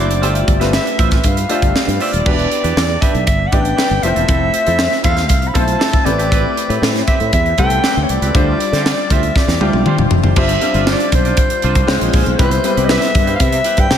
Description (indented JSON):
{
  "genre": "polished 1980s jazz-funk pop",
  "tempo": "118 BPM",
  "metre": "4/4",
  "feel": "straight",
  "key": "unclear",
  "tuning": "A4 = 440 Hz",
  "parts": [
    { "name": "warm soprano saxophone", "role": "melody", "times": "0.0-14.0 s", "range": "C5 to B5", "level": "-19 LUFS", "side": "equal", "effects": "slapback echo" },
    { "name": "clear baby grand piano", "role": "accompaniment", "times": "0.0-14.0 s", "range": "G3 to D5", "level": "-20 LUFS", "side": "left 3 dB", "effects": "analog chorus, slapback echo" },
    { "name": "semi-hollow electric guitar", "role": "riff", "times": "0.0-13.9 s", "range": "C4 to E5", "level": "-24 LUFS", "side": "right 4 dB", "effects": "wide subtle chorus, slapback echo" },
    { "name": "sustaining fretless electric bass", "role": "bass", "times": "0.0-14.0 s", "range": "D#1 to D3", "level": "-18 LUFS", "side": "equal", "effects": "analog chorus" },
    { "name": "tight funk drum kit", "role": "drums", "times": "0.1-14.0 s", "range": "crash cymbal, hi-hat, kick drum, snare drum, toms", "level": "-16 LUFS", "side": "equal", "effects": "none" }
  ],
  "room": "moderate lush hall reverb, RT60 2.0 s",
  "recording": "big arena sound",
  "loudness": "-12 LUFS",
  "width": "side -9 dB against mid",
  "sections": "0.0-2.3 A section; 2.3-10.4 B section; 10.4-14.0 C section",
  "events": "drum fill 9.4-10.4",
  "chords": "0.2 G13sus4; 2.3 Em7; 4.0 Fmaj7; 6.1 Am9; 8.3 Dm11; 10.4 G7sus4; 11.9 C#maj7; 12.4 Cmaj7"
}